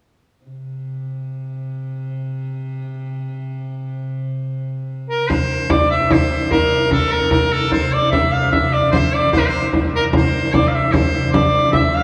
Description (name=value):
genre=medieval dance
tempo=149 BPM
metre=3/4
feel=straight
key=C mixolydian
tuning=A4 = 445 Hz
part: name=warm viola da gamba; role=drone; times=0.5-12.0 s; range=C3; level=-27 LUFS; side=equal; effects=none
part: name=edgy shawm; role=melody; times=5.1-12.0 s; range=A4 to F5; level=-19 LUFS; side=equal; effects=none
part: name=frame drum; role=percussion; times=5.3-11.9 s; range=none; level=-20 LUFS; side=equal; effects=none
room=wet cathedral reverb, RT60 6.6 s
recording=heard from further back in the room, small room ambience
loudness=-18 LUFS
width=mono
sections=0.5-5.3 A section; 5.3-12.0 B section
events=none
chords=none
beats=| 0.47 0.88 1.28 | 1.68 2.08 2.49 | 2.89 3.29 3.70 | 4.10 4.50 4.90 | 5.31 5.71 6.11 | 6.51 6.92 7.32 | 7.72 8.12 8.53 | 8.93 9.33 9.73 | 10.14 10.54 10.94 | 11.34 11.74